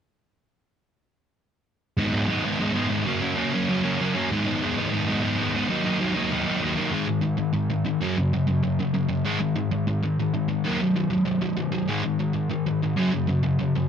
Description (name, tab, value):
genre	punk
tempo	194 BPM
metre	4/4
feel	straight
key	G# minor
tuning	A4 = 439 Hz
part	sludgy distorted guitar	solo	2.0-13.9 s	F#2 to D#4	-22 LUFS	equal	overdrive
room	moderate studio reverb, RT60 0.5 s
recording	band playing live in one room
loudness	-22 LUFS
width	side -8 dB against mid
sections	2.0-6.9 A section; 6.9-13.9 B section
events	none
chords	2.0 G#m; 3.1 F#; 4.3 G#m; 5.7 D#m; 6.9 G#5; 8.0 F#5; 9.3 G#5; 10.6 D#m; 11.9 G#5; 13.0 F#5